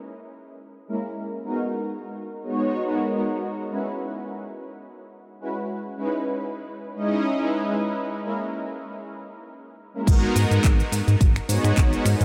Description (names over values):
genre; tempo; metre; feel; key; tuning
nu-disco, nu disco; 106 BPM; 4/4; swing 54% on 16ths; G# minor; A4 = 437 Hz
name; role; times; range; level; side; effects
warm analog pad; accompaniment; 0.9-12.2 s; G#3 to D#5; -29 LUFS; equal; chorus, sidechain pumping, analog delay
chorused synth bass; bass; 10.1-12.2 s; G#1 to G#2; -24 LUFS; equal; sidechain pumping
electronic kick drum; drums; 10.1-11.9 s; none; -21 LUFS; equal; small room ambience
house drum kit; drums; 10.1-12.2 s; cabasa, crash cymbal, finger snaps, handclaps, hi-hat; -33 LUFS; equal; low-pass filter on hats, small room ambience, low-pass filter on cymbals, low-pass filter on perc, low-pass filter on snare
room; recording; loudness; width
moderate huge ambient reverb, RT60 4.7 s; dreamy mix soaked in reverb; -24 LUFS; mono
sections
0.0-10.1 A section; 10.1-12.2 B section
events
break 7.8-10.1; drop 10.1-12.2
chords
0.0 A#m7b5; 1.0 G#m7; 3.3 F#9sus4; 5.5 C#m7; 7.8 A#m7b5; 10.1 G#m7